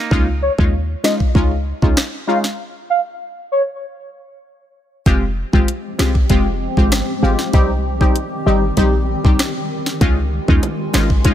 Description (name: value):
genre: dancehall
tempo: 97 BPM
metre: 4/4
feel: straight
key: F minor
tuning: A4 = 440 Hz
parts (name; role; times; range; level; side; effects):
- synth brass stab; accompaniment; 0.1-11.3 s; G3 to G4; -20 LUFS; left 1 dB; chorus
- short 808-style bass; bass; 0.1-11.3 s; F1 to Eb2; -18 LUFS; equal; none
- afro-pop drum kit; drums; 0.1-11.3 s; hi-hat, kick drum, rim click, snare drum; -17 LUFS; equal; none
- warm velvety synth lead; melody; 0.4-3.6 s; Db5 to F5; -21 LUFS; equal; chorus, ping-pong delay
- granular cloud pad; sustained chords; 5.7-11.3 s; Eb3 to G4; -24 LUFS; equal; built-in reverb, sidechain pumping
- bongos; percussion; 10.6-11.3 s; none; -31 LUFS; right 5 dB; none
room: digital ambience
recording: none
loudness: -14 LUFS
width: side -11 dB against mid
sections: 0.0-5.1 A section; 5.1-11.3 B section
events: break 2.6-5.1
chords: 0.1 Dbadd9; 2.6 N.C.; 5.1 Fmadd9; 7.5 Cm; 10.0 Dbadd9